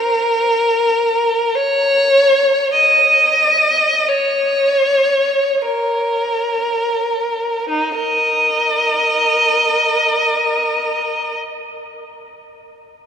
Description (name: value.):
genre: classical, free, expressive piece for unaccompanied violin.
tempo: free time.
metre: none.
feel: none.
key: unclear.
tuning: A4 = 440 Hz.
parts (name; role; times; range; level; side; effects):
rich violin; solo; 0.0-11.4 s; Eb4 to Eb5; -13 LUFS; equal; none.
room: wet cathedral reverb, RT60 6.3 s.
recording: minimal, uncompressed stereo recording.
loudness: -13 LUFS.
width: side -8 dB against mid.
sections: 0.0-7.7 A section; 7.7-13.1 B section.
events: slowing down 0.0-7.7.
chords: none.